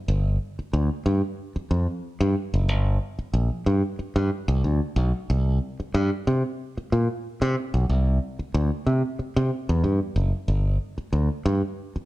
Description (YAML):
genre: funk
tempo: 92 BPM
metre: 4/4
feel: straight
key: G dorian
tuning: A4 = 440 Hz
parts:
  - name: modern bright fingered electric bass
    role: solo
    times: 0.1-12.0 s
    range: F#1 to C3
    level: -22 LUFS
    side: equal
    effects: none
room: moderate large studio reverb, RT60 1.2 s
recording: dark, warm production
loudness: -22 LUFS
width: side -17 dB against mid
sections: 0.0-10.5 A section; 10.5-12.1 A section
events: none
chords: none